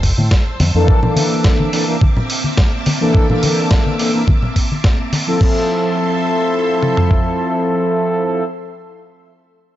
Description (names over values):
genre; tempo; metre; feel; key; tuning
nu-disco, nu disco; 106 BPM; 4/4; straight; F major; A4 = 442 Hz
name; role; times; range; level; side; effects
string machine, full ensemble; sustained chords; 0.0-8.4 s; Bb3 to E6; -25 LUFS; equal; ensemble chorus, sidechain pumping
fingered electric bass with an envelope filter; bass; 0.0-0.8 s; F1 to A2; -15 LUFS; equal; none
dusty soul sampler-style drum kit; drums; 0.0-7.2 s; kick drum, toms; -14 LUFS; equal; overdrive
dusty soul sampler-style drum kit; drums; 0.0-5.5 s; crash cymbal, hi-hat, snare drum; -23 LUFS; right 1 dB; overdrive
congas; percussion; 0.2-5.2 s; none; -20 LUFS; left 1 dB; none
mellow synth brass; accompaniment; 0.7-8.4 s; E3 to Bb4; -16 LUFS; equal; chorus, analog delay
room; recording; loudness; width
light reverb, digital ambience; dry, gritty hardware recording, nothing above 7.7 kHz; -13 LUFS; side -13 dB against mid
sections
0.0-5.4 A section; 5.4-7.7 B section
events
none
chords
0.0 Fmaj7; 0.9 C13; 5.4 Fmaj7